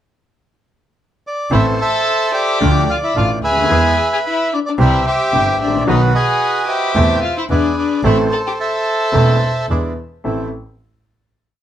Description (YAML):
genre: tango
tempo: 110 BPM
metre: 4/4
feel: rubato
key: A minor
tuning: A4 = 438 Hz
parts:
  - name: bandoneon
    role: melody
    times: 1.3-9.7 s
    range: F#4 to A5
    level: -17 LUFS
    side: right 1 dB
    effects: plate reverb
  - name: warm violin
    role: second line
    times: 1.5-9.7 s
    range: D4 to A4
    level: -21 LUFS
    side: left 5 dB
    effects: none
  - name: clear upright piano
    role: accompaniment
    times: 1.5-10.5 s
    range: E1 to A4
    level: -20 LUFS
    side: left 1 dB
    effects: none
  - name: bandoneon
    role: stabs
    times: 1.5-10.5 s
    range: F#3 to F4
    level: -23 LUFS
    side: right 3 dB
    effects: none
  - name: dark double bass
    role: bass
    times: 1.5-10.5 s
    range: E1 to E2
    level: -18 LUFS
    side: right 1 dB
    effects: none
room: moderate club reverb, RT60 0.5 s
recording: none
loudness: -13 LUFS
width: side -10 dB against mid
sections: 0.0-1.5 pickup bar; 1.5-10.3 A section; 10.3-11.6 final chord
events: none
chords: 0.0 N.C.; 1.5 Am; 2.6 Dm; 3.7 E; 4.8 C; 5.9 B; 7.0 Am/E; 7.5 E; 8.0 Am; 9.7 E7; 10.3 Am